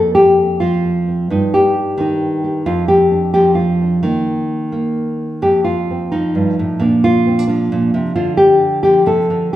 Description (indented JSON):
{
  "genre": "folk, solo fingerstyle acoustic guitar",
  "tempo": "132 BPM",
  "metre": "3/4",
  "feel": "rubato",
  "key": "unclear",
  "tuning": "A4 = 439 Hz",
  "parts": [
    { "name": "nylon-string guitar", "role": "solo", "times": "0.0-9.6 s", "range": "F2 to A4", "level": "-12 LUFS", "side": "equal", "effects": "none" }
  ],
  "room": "wet recital hall reverb, RT60 1.4 s",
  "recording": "recorded in a church or concert hall",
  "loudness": "-12 LUFS",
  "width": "side -13 dB against mid",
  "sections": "0.0-9.6 A section",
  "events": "none",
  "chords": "0.0 Fsus2; 1.3 Eb/G; 2.7 Dmadd11/F; 4.0 Eb5; 5.4 F; 6.8 Bbadd9; 8.2 Dm"
}